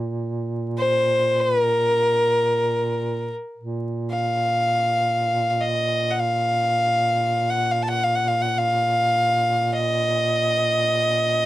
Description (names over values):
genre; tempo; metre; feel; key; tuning
caucasian folk, Caucasian lament; free time; none; none; unclear; A4 = 440 Hz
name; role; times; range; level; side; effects
warm duduk; drone; 0.0-11.5 s; Bb2; -26 LUFS; right 2 dB; stereo widening
clear fiddle; melody; 0.8-11.5 s; Bb4 to A5; -20 LUFS; left 1 dB; none
room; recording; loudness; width
light reverb; dry, close 1970s-style studio recording, vinyl crackle; -19 LUFS; side -15 dB against mid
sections
0.0-3.6 A section; 3.6-11.5 A section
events
none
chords
none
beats
free time